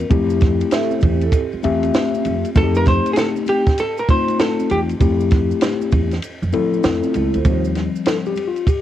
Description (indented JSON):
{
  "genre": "hip hop, jazz-hop",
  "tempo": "98 BPM",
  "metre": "4/4",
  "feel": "swing 64% on 16ths",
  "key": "F major",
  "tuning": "A4 = 444 Hz",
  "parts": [
    { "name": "mellow tine electric piano", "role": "accompaniment", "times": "0.0-8.8 s", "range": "F3 to E5", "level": "-20 LUFS", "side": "left 6 dB", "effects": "medium stereo tremolo, cassette tape" },
    { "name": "upright bass", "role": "bass", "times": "0.0-7.9 s", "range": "Db2 to F3", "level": "-21 LUFS", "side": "right 2 dB", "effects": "none" },
    { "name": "maracas and congas", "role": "percussion", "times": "0.0-8.8 s", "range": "none", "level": "-33 LUFS", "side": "right 10 dB", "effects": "none" },
    { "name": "compact cocktail drum kit", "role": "drums", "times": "0.1-8.8 s", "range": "hi-hat, kick drum, ride cymbal, snare drum", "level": "-19 LUFS", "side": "right 1 dB", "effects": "cassette tape" },
    { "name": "vibraphone with soft mallets", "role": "second line", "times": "0.7-2.4, 7.0-7.6 s", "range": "C4 to E5", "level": "-25 LUFS", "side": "right 9 dB", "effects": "cassette tape" },
    { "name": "vintage hollow-body jazz guitar", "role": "melody", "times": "2.6-4.8 s", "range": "G4 to C5", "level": "-20 LUFS", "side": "right 1 dB", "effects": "cassette tape" }
  ],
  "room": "light reverb, small room reverb",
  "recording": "home recording on cassette",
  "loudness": "-15 LUFS",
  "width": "side -12 dB against mid",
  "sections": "0.0-7.5 A section; 7.5-8.8 B section",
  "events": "break 6.2-7.5; tine electric piano solo 7.5-8.8",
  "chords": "0.1 Fmaj9; 2.6 F9; 5.0 Fmaj7; 7.5 Eb69"
}